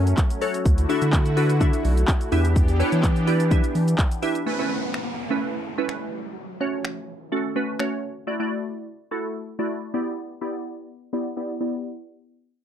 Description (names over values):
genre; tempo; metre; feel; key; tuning
dance-pop; 126 BPM; 4/4; straight; E dorian; A4 = 440 Hz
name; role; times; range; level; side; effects
glassy wavetable pluck; accompaniment; 0.0-11.9 s; A3 to E5; -26 LUFS; equal; chorus, sidechain pumping, low-pass filter
filtered supersaw swell; sustained chords; 0.0-4.4 s; D3 to G4; -29 LUFS; left 1 dB; phaser, sidechain pumping
saturated sub bass; bass; 0.0-4.0 s; B1 to E3; -20 LUFS; equal; sidechain pumping
pop drum kit; drums; 0.1-7.9 s; finger snaps, handclaps, hi-hat, kick drum, shaker; -22 LUFS; equal; overdrive
downlifter; sound effects; 4.5-8.3 s; none; -34 LUFS; left 1 dB; none
room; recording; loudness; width
little or no reverb; dry, close 1970s-style studio recording; -21 LUFS; side -10 dB against mid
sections
0.0-4.5 A section; 4.5-12.1 B section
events
filter sweep on synth pluck 4.5-12.1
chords
0.0 F#m; 0.7 Dadd9; 2.3 Em7; 4.5 Aadd9; 6.4 F#m; 8.3 Dadd9; 9.9 Em7